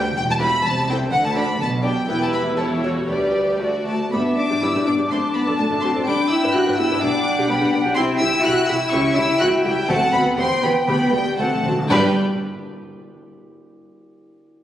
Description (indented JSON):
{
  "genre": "quick classical-period movement for symphony orchestra",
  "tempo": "124 BPM",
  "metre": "2/4",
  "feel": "rubato",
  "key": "G major",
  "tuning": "A4 = 439 Hz",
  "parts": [
    { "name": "warm chamber violin section", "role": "melody", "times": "0.0-12.2 s", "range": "C#5 to F#6", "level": "-24 LUFS", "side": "left 1 dB", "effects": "none" },
    { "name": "clear chamber double bass section", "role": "bass", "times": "0.0-12.2 s", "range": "E1 to G2", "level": "-28 LUFS", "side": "right 1 dB", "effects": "none" },
    { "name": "warm chamber cello section", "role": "bass", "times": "0.0-12.2 s", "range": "D2 to F#4", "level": "-25 LUFS", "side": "right 1 dB", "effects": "none" },
    { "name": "warm chamber violin section", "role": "second line", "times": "0.4-12.2 s", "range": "G4 to A5", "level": "-26 LUFS", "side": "equal", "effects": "none" },
    { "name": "warm chamber viola section", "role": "accompaniment", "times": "0.4-12.2 s", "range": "G3 to B4", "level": "-26 LUFS", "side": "equal", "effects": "none" },
    { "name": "dark French horn section", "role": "sustained chords", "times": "3.9-12.1 s", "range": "G3 to F#4", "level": "-25 LUFS", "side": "left 1 dB", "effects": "none" },
    { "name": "bright concert flute", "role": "second line", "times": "4.1-12.2 s", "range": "F#5 to D6", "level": "-26 LUFS", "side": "equal", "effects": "none" },
    { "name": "mellow clarinet", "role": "second line", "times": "4.1-12.1 s", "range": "B3 to E4", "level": "-25 LUFS", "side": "left 3 dB", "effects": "none" },
    { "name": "timpani", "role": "percussion", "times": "9.9-12.1 s", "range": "G2 to D3", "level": "-29 LUFS", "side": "equal", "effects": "none" }
  ],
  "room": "wet recital hall reverb, RT60 1.8 s",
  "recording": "recorded on a phone in the room, studio reverb, compression",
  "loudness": "-17 LUFS",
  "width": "side -11 dB against mid",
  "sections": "0.0-4.1 A section; 4.1-11.9 B section",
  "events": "timpani fill 11.4-11.9",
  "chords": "0.2 Em; 0.6 Am/C; 1.1 D5; 1.6 G/B; 2.1 Em; 2.6 A7/E; 3.1 G/D; 3.6 D; 4.1 G; 5.1 D7; 6.1 G; 8.0 C; 8.9 C#dim; 9.9 D7; 10.4 Em; 10.9 G/D; 11.4 D7; 11.9 G"
}